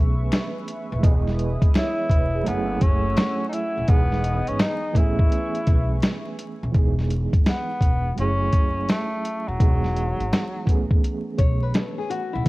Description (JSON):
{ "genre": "lo-fi hip hop", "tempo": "84 BPM", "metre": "4/4", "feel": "swing 65% on 16ths", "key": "E major", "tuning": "A4 = 439 Hz", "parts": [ { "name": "overdriven reed electric piano", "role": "accompaniment", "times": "0.0-12.5 s", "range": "E3 to D#5", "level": "-29 LUFS", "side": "right 4 dB", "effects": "fast tremolo, cassette tape, low-pass filter" }, { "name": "warm analog pad", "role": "sustained chords", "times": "0.0-6.7 s", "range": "A3 to E6", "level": "-34 LUFS", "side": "equal", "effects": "chorus, low-pass filter" }, { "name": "upright bass", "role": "bass", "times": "0.0-12.5 s", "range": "D#1 to B1", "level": "-25 LUFS", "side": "equal", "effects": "transformer saturation" }, { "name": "dusty soul sampler-style drum kit", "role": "drums", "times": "0.3-12.5 s", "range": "hi-hat, kick drum, snare drum", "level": "-20 LUFS", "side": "equal", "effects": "cassette tape" }, { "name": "finger snaps", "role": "percussion", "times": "0.3-6.2 s", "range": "none", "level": "-42 LUFS", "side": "left 9 dB", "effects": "none" }, { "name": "breathy tenor saxophone", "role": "melody", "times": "1.8-10.9 s", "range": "F#3 to E4", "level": "-27 LUFS", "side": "left 1 dB", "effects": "low-pass filter, cassette tape" }, { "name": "nylon-string guitar", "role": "second line", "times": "11.4-12.5 s", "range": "E4 to C#5", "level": "-28 LUFS", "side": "left 5 dB", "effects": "low-pass filter, tape echo" } ], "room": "small room reverb", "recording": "home recording on cassette, vinyl crackle", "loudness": "-20 LUFS", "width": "side -20 dB against mid", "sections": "0.0-6.7 A section; 6.7-12.5 B section", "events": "none", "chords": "0.0 Amaj9; 1.0 Emaj7; 2.5 F#m9; 3.9 Emaj7; 5.0 Amaj9; 6.7 Emaj7; 8.2 F#m9; 9.6 Emaj7; 10.7 Amaj9", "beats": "0.32 | 1.03 1.75 2.46 3.17 | 3.89 4.60 5.32 6.03 | 6.75 7.46 8.17 8.89 | 9.60 10.32 11.03 11.75 | 12.46" }